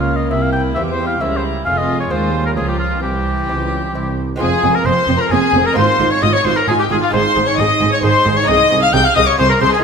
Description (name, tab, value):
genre	classical, baroque-style concerto movement with solo episodes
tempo	132 BPM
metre	3/4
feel	straight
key	F minor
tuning	A4 = 441 Hz
part	clear oboe	melody	0.0-9.8 s	F4 to G5	-18 LUFS	left 1 dB	none
part	rich chamber violin section	melody	0.0-9.8 s	F5 to G6	-21 LUFS	left 6 dB	none
part	warm chamber violin section	second line	0.0-9.8 s	C4 to G5	-20 LUFS	left 4 dB	none
part	dark chamber viola section	accompaniment	0.0-9.7 s	E3 to Ab4	-23 LUFS	right 1 dB	none
part	lute	accompaniment	0.0-9.8 s	Eb2 to Ab4	-24 LUFS	right 4 dB	none
part	dark chamber cello section	bass	0.0-9.7 s	C2 to E3	-22 LUFS	right 3 dB	none
part	rich chamber double bass section	bass	0.0-9.7 s	F1 to E2	-21 LUFS	right 4 dB	none
room	moderate recital hall reverb, RT60 1.7 s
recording	minimal, uncompressed stereo recording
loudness	-13 LUFS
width	side -6 dB against mid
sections	0.0-4.4 A section; 4.4-9.8 B section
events	none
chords	0.3 C7; 1.7 Fm; 2.6 Bbm/Db; 3.0 C; 4.4 Fm; 5.8 Fm/Ab; 7.1 Ab5; 8.5 Ab/C